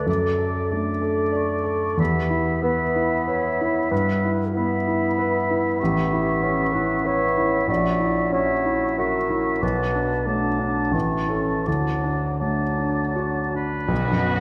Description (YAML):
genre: classical, romantic movement for piano and orchestra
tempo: 75-97 BPM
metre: 3/4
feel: rubato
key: D major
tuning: A4 = 437 Hz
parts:
  - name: clear grand piano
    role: melody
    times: 0.0-14.4 s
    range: A1 to D5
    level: -25 LUFS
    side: equal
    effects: none
  - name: dark clarinet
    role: second line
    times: 0.0-13.5 s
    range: D4 to D5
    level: -31 LUFS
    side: equal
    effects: none
  - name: mellow hollow silver concert flute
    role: second line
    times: 0.0-13.5 s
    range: B5 to D6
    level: -33 LUFS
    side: equal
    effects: none
  - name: warm oboe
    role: second line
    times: 0.0-14.4 s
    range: B4 to A5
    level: -31 LUFS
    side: equal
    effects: none
  - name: mellow bassoon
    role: accompaniment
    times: 0.0-13.5 s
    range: E3 to B3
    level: -32 LUFS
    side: equal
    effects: none
  - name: warm symphonic violin section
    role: melody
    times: 13.9-14.4 s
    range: F#4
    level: -34 LUFS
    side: equal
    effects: none
  - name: warm symphonic violin section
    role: second line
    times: 13.9-14.4 s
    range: B3 to D4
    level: -35 LUFS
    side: equal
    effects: none
  - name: warm symphonic viola section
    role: accompaniment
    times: 13.9-14.4 s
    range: B3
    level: -34 LUFS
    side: equal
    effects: none
  - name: warm symphonic cello section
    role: bass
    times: 13.9-14.4 s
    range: B2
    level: -32 LUFS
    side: equal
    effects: none
  - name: warm symphonic double bass section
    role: bass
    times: 13.9-14.4 s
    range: B1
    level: -36 LUFS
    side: equal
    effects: none
room: moderate concert hall reverb, RT60 2.3 s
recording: none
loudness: -22 LUFS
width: mono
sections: 0.0-13.9 A section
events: none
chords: 0.1 D/F#; 2.0 Em; 7.7 F#7/A#; 10.9 A; 11.7 D